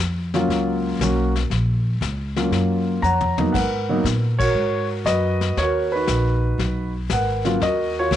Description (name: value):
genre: jazz piano trio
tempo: 118 BPM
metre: 4/4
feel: swing 68% on 8ths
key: Eb minor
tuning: A4 = 440 Hz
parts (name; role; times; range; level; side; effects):
- upright bass; bass; 0.0-8.2 s; Ab1 to Bb2; -23 LUFS; equal; none
- dark concert grand piano; melody; 0.3-8.2 s; Gb3 to Bb5; -21 LUFS; equal; none
- vintage brush drum kit; drums; 0.3-8.2 s; brushed snare drum, crash cymbal, hi-hat, kick drum, ride cymbal, snare drum, toms; -29 LUFS; left 6 dB; none
room: little or no reverb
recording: 1960s-style stereo, nothing above 10.9 kHz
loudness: -19 LUFS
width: side -11 dB against mid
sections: 0.0-8.2 A section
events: drum fill 3.0-3.5; band accent 4.3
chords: 0.0 Ebm9 (rootless); 3.5 Abm9; 7.6 Ebm9